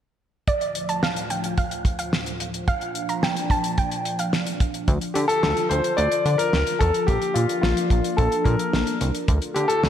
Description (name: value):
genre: synth-pop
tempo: 109 BPM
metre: 4/4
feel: straight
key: D minor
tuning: A4 = 440 Hz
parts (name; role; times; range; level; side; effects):
- soft round pluck; second line; 0.5-4.3 s; D5 to Bb5; -27 LUFS; right 4 dB; chorus, slapback echo, tape echo
- phased analog pad; sustained chords; 0.5-9.9 s; D2 to F4; -30 LUFS; equal; phaser, chorus
- damped 70s drum kit; drums; 0.5-9.9 s; hi-hat, kick drum, snare drum; -25 LUFS; equal; none
- chorused synth bass; bass; 4.9-9.9 s; Bb1 to D3; -23 LUFS; right 1 dB; none
- warm concert grand piano; melody; 5.1-9.9 s; F4 to D5; -22 LUFS; left 2 dB; none
room: wet lush hall reverb, RT60 2.2 s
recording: big arena sound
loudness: -20 LUFS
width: side -10 dB against mid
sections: 0.5-4.9 A section; 4.9-9.9 B section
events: none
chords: 0.5 Dm; 2.7 Bb; 4.9 Dm; 7.1 Bb; 9.3 Dm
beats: | 0.47 1.03 1.58 2.13 | 2.68 3.23 3.78 4.33 | 4.88 5.43 5.98 6.53 | 7.08 7.63 8.18 8.73 | 9.28 9.83